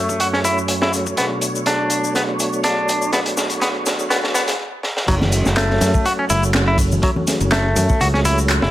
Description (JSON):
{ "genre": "breakbeat, breaks", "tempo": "123 BPM", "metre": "4/4", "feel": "swing 54% on 16ths", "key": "F# minor", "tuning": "A4 = 443 Hz", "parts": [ { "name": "tonewheel organ", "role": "sustained chords", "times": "0.0-8.7 s", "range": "F#2 to C#5", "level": "-23 LUFS", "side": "right 1 dB", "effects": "chorus vibrato, slow rotary speaker, vintage 12-bit sampler grit, sidechain pumping" }, { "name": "direct-recorded clean electric guitar", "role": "riff", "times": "0.0-8.7 s", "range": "F#3 to F#4", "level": "-21 LUFS", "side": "equal", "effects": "overdrive, vintage 12-bit sampler grit, low-pass filter, dub echo" }, { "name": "crunchy breakbeat drum kit", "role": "drums", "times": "0.1-8.7 s", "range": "crash cymbal, hi-hat, kick drum, snare drum", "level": "-21 LUFS", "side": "equal", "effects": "high-pass filter on kick, high-pass filter on hats, high-pass filter on cymbals, high-pass filter on snare, high-pass filter on room" }, { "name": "punchy analog drum machine", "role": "drums", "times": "0.1-8.6 s", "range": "handclaps, ride cymbal, shaker", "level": "-25 LUFS", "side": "left 1 dB", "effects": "none" }, { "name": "fingered electric bass", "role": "bass", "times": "5.1-8.7 s", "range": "F#1 to F#2", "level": "-18 LUFS", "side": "equal", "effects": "none" }, { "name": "congas", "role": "percussion", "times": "5.2-8.4 s", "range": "none", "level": "-26 LUFS", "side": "left 2 dB", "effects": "none" } ], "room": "light reverb, studio reverb", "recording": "high-pass filter", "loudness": "-16 LUFS", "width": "side -14 dB against mid", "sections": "0.0-5.1 A section; 5.1-8.7 B section", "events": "build-up 0.0-5.1; drum fill 1.2-4.6, 4.8; stop 4.6-5.1; drop 5.1-8.7", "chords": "0.0 F#m; 1.2 Bm7; 5.1 F#m", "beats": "0.20 0.69 | 1.18 1.67 2.15 2.64 | 3.13 3.62 4.11 4.59 | 5.08 5.57 6.06 6.54 | 7.03 7.52 8.01 8.50" }